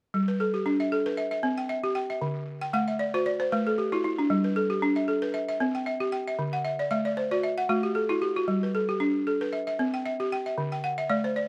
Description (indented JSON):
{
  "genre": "west african traditional",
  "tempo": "115 BPM",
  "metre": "4/4",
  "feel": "swing 55% on 16ths",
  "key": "G major",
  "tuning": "A4 = 435 Hz",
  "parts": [
    { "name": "balafon", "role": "arpeggios", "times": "0.1-11.5 s", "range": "D3 to G5", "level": "-28 LUFS", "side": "equal", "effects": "none" }
  ],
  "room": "little or no reverb",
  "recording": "close, detailed microphones",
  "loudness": "-28 LUFS",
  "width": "mono",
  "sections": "0.1-11.5 A section",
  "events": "balafon fill 2.6-4.3, 6.5-8.5, 10.7-11.5",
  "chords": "0.1 G; 1.2 C; 2.2 D; 3.3 A5; 4.3 G; 5.3 C; 6.4 D; 7.4 A5; 8.5 G; 9.5 C; 10.6 D"
}